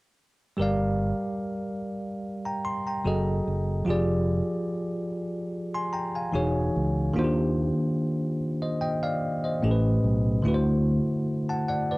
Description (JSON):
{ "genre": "R&B, neo-soul", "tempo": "73 BPM", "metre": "4/4", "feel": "swing 54% on 16ths", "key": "unclear", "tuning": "A4 = 442 Hz", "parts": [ { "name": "bell-like tine electric piano", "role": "accompaniment", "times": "0.6-12.0 s", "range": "A2 to C6", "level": "-25 LUFS", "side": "equal", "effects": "fast stereo tremolo, cassette tape" }, { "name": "fingered electric bass", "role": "bass", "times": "0.6-11.0 s", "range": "E1 to Eb2", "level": "-27 LUFS", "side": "equal", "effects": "transformer saturation" } ], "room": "moderate booth ambience, RT60 0.3 s", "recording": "home recording on cassette", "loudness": "-24 LUFS", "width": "side -23 dB against mid", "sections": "0.6-12.0 A section", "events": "none", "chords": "0.6 Gm7; 3.0 Gbm69; 3.9 Fm69; 6.3 Emaj13; 7.2 Ebmaj13; 9.6 A9; 10.4 D7" }